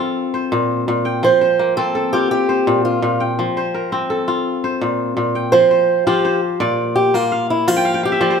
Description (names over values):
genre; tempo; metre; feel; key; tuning
west african traditional; 112 BPM (dotted quarters); 12/8; straight; unclear; A4 = 440 Hz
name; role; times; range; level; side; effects
kora; arpeggios; 0.0-8.4 s; Bb2 to G5; -18 LUFS; left 2 dB; none
fingerpicked swing-style acoustic guitar; melody; 1.2-8.4 s; E4 to C5; -15 LUFS; right 2 dB; none
room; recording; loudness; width
light reverb; none; -15 LUFS; side -6 dB against mid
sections
0.0-5.5 A section; 5.5-8.4 B section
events
steel-string acoustic guitar solo 5.5-8.4; kora fill 7.8-8.4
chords
0.2 Bbsus2; 1.2 F; 2.3 Bb5; 3.4 F; 4.5 Bbsus2; 5.5 F5; 6.6 Bb; 7.7 N.C.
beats
0.16 0.70 | 1.23 1.77 2.31 2.85 | 3.38 3.92 4.46 4.99 | 5.53 6.07 6.60 7.14 | 7.67 8.21